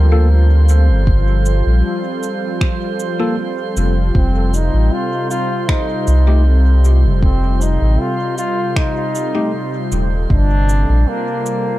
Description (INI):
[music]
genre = ambient dub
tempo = 78 BPM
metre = 4/4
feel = straight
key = F mixolydian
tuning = A4 = 440 Hz
[part]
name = warm trombone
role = melody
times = 0.0-11.8 s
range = Bb3 to F4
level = -22 LUFS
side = equal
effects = dub echo
[part]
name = warm analog pad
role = sustained chords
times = 0.0-11.8 s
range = C3 to A4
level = -22 LUFS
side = left 1 dB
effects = chorus
[part]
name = warm sub bass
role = bass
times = 0.0-11.1 s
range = Eb1 to D2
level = -12 LUFS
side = equal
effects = none
[part]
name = drifting glass-harmonics texture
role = texture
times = 0.0-11.8 s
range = C5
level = -28 LUFS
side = right 8 dB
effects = chorus, built-in reverb
[part]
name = tine electric piano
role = stabs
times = 0.1-9.5 s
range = A3 to A4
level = -24 LUFS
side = left 2 dB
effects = overdrive, vintage 12-bit sampler grit, dub echo
[part]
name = electronic cabasa and finger snaps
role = drums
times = 0.7-11.6 s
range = none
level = -29 LUFS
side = equal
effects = overdrive, small room reverb, dub echo
[part]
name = electronic kick drum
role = drums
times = 1.1-10.5 s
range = none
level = -16 LUFS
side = equal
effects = overdrive, small room reverb
[sound]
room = digital ambience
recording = echo-heavy mix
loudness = -13 LUFS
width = side -16 dB against mid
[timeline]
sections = 0.0-11.8 A section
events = none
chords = 0.0 G7(no3); 4.2 F7; 10.3 Gm7